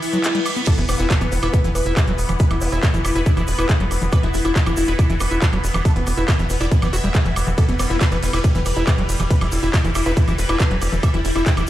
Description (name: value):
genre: psychedelic trance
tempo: 139 BPM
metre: 4/4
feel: straight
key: E minor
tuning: A4 = 440 Hz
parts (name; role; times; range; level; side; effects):
- supersaw stab; melody; 0.0-11.6 s; B3 to G5; -26 LUFS; equal; phaser, sidechain pumping, digital delay
- bubbling stepped-filter texture; sustained chords; 0.0-11.7 s; E3 to B3; -28 LUFS; left 1 dB; chorus, built-in reverb, sidechain pumping
- techno drum kit; drums; 0.0-11.7 s; crash cymbal, handclaps, hi-hat, ride cymbal, woodblock; -26 LUFS; right 1 dB; overdrive
- egg shaker; percussion; 0.0-11.7 s; none; -37 LUFS; right 3 dB; none
- reverse cymbal and impact; sound effects; 0.0-2.4 s; none; -30 LUFS; right 2 dB; none
- overdriven acid bass; riff; 0.1-11.6 s; E3 to F#4; -26 LUFS; moving between left 5 dB and right 3 dB; auto-pan, cassette tape, sidechain pumping, digital delay
- electronic kick drum; drums; 0.7-11.6 s; none; -17 LUFS; equal; none
- tight sequencer bass; bass; 0.8-11.6 s; E1; -22 LUFS; equal; none
- vowel-sweep wobble bass; second line; 0.9-2.8, 7.8-10.7 s; B3 to E4; -37 LUFS; left 2 dB; none
room: little or no reverb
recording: played on a big sound system in a bare room, stone room reverb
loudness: -16 LUFS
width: side -14 dB against mid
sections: 0.7-11.7 A section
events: break 0.0-0.7; reverse cymbal 0.0-0.7; drop 0.7-11.7; impact 0.7-2.4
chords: 0.0 E5